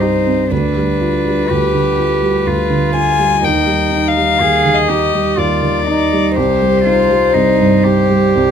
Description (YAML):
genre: classical, slow romantic movement for piano trio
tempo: 61 BPM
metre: 3/4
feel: rubato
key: C minor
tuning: A4 = 438 Hz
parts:
  - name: warm violin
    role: melody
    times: 0.0-8.5 s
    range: B4 to Ab5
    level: -15 LUFS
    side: left 7 dB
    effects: none
  - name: warm cello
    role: second line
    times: 0.0-8.5 s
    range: D4 to Ab4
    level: -18 LUFS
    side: right 5 dB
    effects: none
  - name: dark grand piano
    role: accompaniment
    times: 0.0-8.5 s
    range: C2 to G4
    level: -16 LUFS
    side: right 2 dB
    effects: none
room: light reverb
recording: none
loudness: -11 LUFS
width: side -8 dB against mid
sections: 0.0-8.5 A section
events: none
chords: 0.0 C5; 0.5 G7/D; 3.4 Ebmaj9; 6.4 Cm